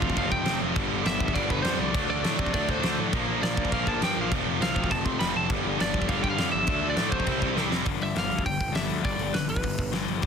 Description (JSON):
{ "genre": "punk rock", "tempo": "203 BPM", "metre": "4/4", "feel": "straight", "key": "unclear", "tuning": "A4 = 439 Hz", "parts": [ { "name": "lightly driven lead guitar", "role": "melody", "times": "0.0-10.1 s", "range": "B4 to C6", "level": "-30 LUFS", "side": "equal", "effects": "none" }, { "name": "distorted electric guitar", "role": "riff", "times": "0.0-10.3 s", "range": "F2 to D4", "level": "-30 LUFS", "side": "left 14 dB", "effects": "overdrive" }, { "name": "tight distorted guitar", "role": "riff", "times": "0.0-7.9 s", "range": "F2 to E4", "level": "-31 LUFS", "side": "right 19 dB", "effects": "distortion" }, { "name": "fuzz picked electric bass", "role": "bass", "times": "0.0-10.3 s", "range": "F1 to C3", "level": "-33 LUFS", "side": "right 1 dB", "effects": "overdrive" }, { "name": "big rock drum kit", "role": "drums", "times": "0.0-10.3 s", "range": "crash cymbal, hi-hat, kick drum, snare drum", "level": "-28 LUFS", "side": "right 1 dB", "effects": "none" } ], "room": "light reverb", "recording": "dense, heavily limited modern master", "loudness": "-24 LUFS", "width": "side -7 dB against mid", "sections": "0.0-7.9 A section; 7.9-10.3 B section", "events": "drum fill 7.6", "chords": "0.0 F; 0.8 G; 1.9 D; 3.1 Bb; 4.3 F; 5.5 G; 6.7 D; 7.3 C; 7.9 G", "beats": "0.16 0.46 | 0.76 1.05 1.35 1.64 | 1.94 2.24 2.53 2.83 | 3.12 3.42 3.72 4.01 | 4.31 4.61 4.90 5.20 | 5.49 5.79 6.08 6.38 | 6.68 6.97 7.27 7.57 | 7.86 8.16 8.46 8.75 | 9.05 9.35 9.64 9.94 | 10.24" }